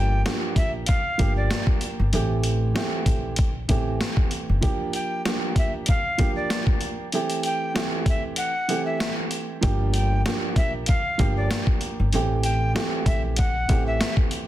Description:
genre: hip hop, boom-bap hip-hop.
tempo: 96 BPM.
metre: 4/4.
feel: swing 56% on 16ths.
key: G dorian.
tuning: A4 = 440 Hz.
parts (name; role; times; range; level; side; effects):
breathy bright jazz flute; melody; 0.0-14.1 s; D5 to G5; -29 LUFS; left 1 dB; high-pass filter, low-pass filter, plate reverb, ping-pong delay.
dark upright piano; accompaniment; 0.0-14.5 s; E3 to G4; -28 LUFS; right 3 dB; cassette tape, high-pass filter, low-pass filter, plate reverb.
upright bass; bass; 0.0-4.6, 9.6-14.0 s; F#1 to Bb1; -24 LUFS; equal; none.
boom bap sampler-style drum kit; drums; 0.3-14.5 s; hi-hat, kick drum, snare drum; -24 LUFS; equal; none.
room: light reverb.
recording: dense, heavily limited modern master.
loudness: -21 LUFS.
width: side -14 dB against mid.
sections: 0.0-9.6 A section; 9.6-14.5 A section.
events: kick muted 8.4-9.6.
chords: 0.0 Gm7; 2.1 Am7; 4.6 Gm7; 7.1 Am7; 9.6 Gm7; 12.1 Am7.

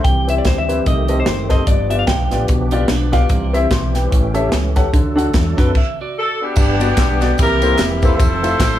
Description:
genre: uptempo gospel.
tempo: 147 BPM.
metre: 4/4.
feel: swing 58% on 8ths.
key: G major.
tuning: A4 = 441 Hz.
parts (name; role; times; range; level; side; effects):
clean electric guitar; melody; 0.0-2.5 s; C5 to G5; -22 LUFS; left 2 dB; spring reverb.
warm upright piano; accompaniment; 0.0-8.5 s; G2 to C6; -20 LUFS; left 2 dB; none.
bright tonewheel organ; sustained chords; 0.0-8.8 s; Eb3 to A4; -25 LUFS; right 3 dB; slow rotary speaker, chorus vibrato.
deep dub fingered electric bass; bass; 0.0-8.8 s; E1 to F#2; -19 LUFS; equal; none.
crisp fusion drum kit; drums; 0.0-8.7 s; crash cymbal, hi-hat, kick drum, ride cymbal, snare drum; -17 LUFS; equal; none.
clean electric guitar; second line; 2.7-6.5 s; B3 to E5; -28 LUFS; right 5 dB; analog chorus, tape echo.
warm horn section; melody; 6.2-8.8 s; B3 to C5; -18 LUFS; left 1 dB; none.
tambourine and handclaps; percussion; 6.6-8.7 s; none; -31 LUFS; left 1 dB; none.
room: small room ambience.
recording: none.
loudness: -13 LUFS.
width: side -12 dB against mid.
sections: 0.0-6.6 A section; 6.6-8.8 B section.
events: stop 5.8-6.6.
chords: 0.0 C; 0.9 Cm6; 1.7 G7; 2.5 G7/B; 3.3 C; 4.1 A7; 4.9 D; 6.6 Gmaj7; 7.4 C7; 8.2 Fmaj7.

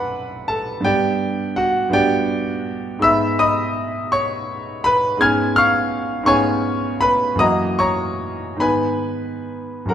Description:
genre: classical, romantic nocturne for solo piano.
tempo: 44-56 BPM (dotted quarters).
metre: 6/8.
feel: rubato.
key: G major.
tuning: A4 = 440 Hz.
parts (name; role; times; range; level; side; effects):
clear concert grand piano; solo; 0.0-9.9 s; F#2 to G#6; -17 LUFS; equal; none.
room: moderate recital hall reverb, RT60 1.5 s.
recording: none.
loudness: -17 LUFS.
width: side -9 dB against mid.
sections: 0.0-9.9 A section.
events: none.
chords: 0.0 D7/F#; 0.9 G; 3.0 G#m; 5.2 C#7/G#; 7.4 F#7; 8.6 G#m.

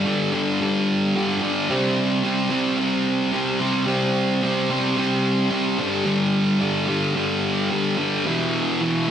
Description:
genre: rock.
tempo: 109 BPM.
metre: 4/4.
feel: straight.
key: unclear.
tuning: A4 = 439 Hz.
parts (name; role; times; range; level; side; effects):
thick fuzz guitar; solo; 0.0-9.1 s; E2 to C4; -19 LUFS; equal; distortion, slapback echo.
room: wet lush hall reverb, RT60 1.7 s.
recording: big arena sound.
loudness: -19 LUFS.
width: side -9 dB against mid.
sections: 0.0-9.1 A section.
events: none.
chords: 0.0 G5; 1.7 C5; 5.8 G5; 8.3 E5.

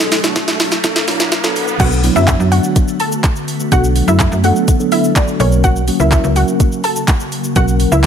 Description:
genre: dance-pop.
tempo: 125 BPM.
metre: 4/4.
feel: straight.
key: B minor.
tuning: A4 = 441 Hz.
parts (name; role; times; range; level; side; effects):
mellow tine electric piano; accompaniment; 0.0-8.1 s; B2 to A#4; -18 LUFS; left 1 dB; medium stereo tremolo, sidechain pumping.
glassy FM pad; sustained chords; 0.1-8.1 s; C#3 to F#4; -23 LUFS; right 1 dB; ensemble chorus, built-in reverb, phaser, sidechain pumping.
smooth R&B drum kit; drums; 0.0-8.1 s; crash cymbal, handclaps, hi-hat, kick drum, shaker, snare drum; -16 LUFS; equal; none.
riser; sound effects; 0.0-1.8 s; none; -22 LUFS; right 2 dB; none.
wide unison pluck; melody; 1.8-8.1 s; C#4 to A5; -18 LUFS; equal; sidechain pumping, ping-pong delay.
slap-like FM bass; bass; 1.8-8.1 s; B1 to F#2; -14 LUFS; equal; sidechain pumping.
room: digital ambience.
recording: high-pass filter.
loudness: -11 LUFS.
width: side -8 dB against mid.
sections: 0.0-1.8 A section; 1.8-8.1 B section.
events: build-up 0.0-1.8; drum fill 0.0-1.8; riser 0.0-1.8; drop 1.8-8.1.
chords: 0.0 Bm7; 5.4 F#/B.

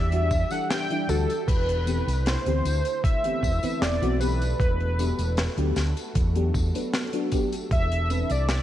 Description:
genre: vaporwave.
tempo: 77 BPM.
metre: 4/4.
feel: straight.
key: unclear.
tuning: A4 = 440 Hz.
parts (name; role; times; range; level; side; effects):
warm velvety synth lead; melody; 0.0-8.6 s; A4 to G5; -29 LUFS; equal; chorus, tape echo.
soft string machine; sustained chords; 0.0-8.6 s; D3 to A4; -37 LUFS; equal; ensemble chorus, vintage 12-bit sampler grit.
overdriven fingered electric bass; bass; 0.0-8.6 s; E1 to E2; -25 LUFS; equal; none.
FM electric piano with soft pad layer; accompaniment; 0.1-8.3 s; E3 to B4; -30 LUFS; left 2 dB; analog chorus, vintage 12-bit sampler grit, tape echo.
tight funk drum kit; drums; 0.1-8.6 s; crash cymbal, hi-hat, snare drum, tambourine; -32 LUFS; left 1 dB; studio ambience.
electronic kick drum; drums; 0.3-7.9 s; none; -25 LUFS; equal; studio ambience.
room: light reverb, small room ambience.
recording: cassette tape.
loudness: -22 LUFS.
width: side -12 dB against mid.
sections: 0.0-8.6 A section.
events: none.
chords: 0.0 Em9; 1.5 D13sus4/E; 4.6 Gmaj7/E; 7.7 Cmaj9/E.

